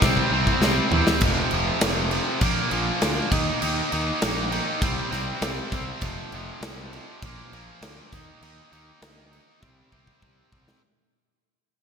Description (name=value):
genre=hard rock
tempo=100 BPM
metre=4/4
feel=straight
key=unclear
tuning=A4 = 440 Hz
part: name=overdriven electric guitar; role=riff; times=0.0-10.8 s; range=F2 to Eb4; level=-25 LUFS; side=equal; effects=none
part: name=fuzz fingered electric bass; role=bass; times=0.0-10.7 s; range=F1 to E2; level=-30 LUFS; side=equal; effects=overdrive
part: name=big rock drum kit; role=drums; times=0.0-10.8 s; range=crash cymbal, kick drum, snare drum, toms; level=-25 LUFS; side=equal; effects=gated reverb
room=light reverb, small room ambience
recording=bright 1980s-style digital production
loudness=-21 LUFS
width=side -6 dB against mid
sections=0.0-10.8 A section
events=fade-out 0.0-10.8; drum fill 0.0-1.2, 9.6-10.8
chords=0.0 C; 1.2 F5; 2.4 Bb; 3.3 Eb5; 4.8 C5; 6.0 F5; 7.2 Bb; 8.1 Eb5; 9.6 C5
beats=0.02 0.61 | 1.22 1.81 2.42 3.02 | 3.62 4.22 4.82 5.42 | 6.02 6.62 7.22 7.82 | 8.42 9.02 9.62 10.22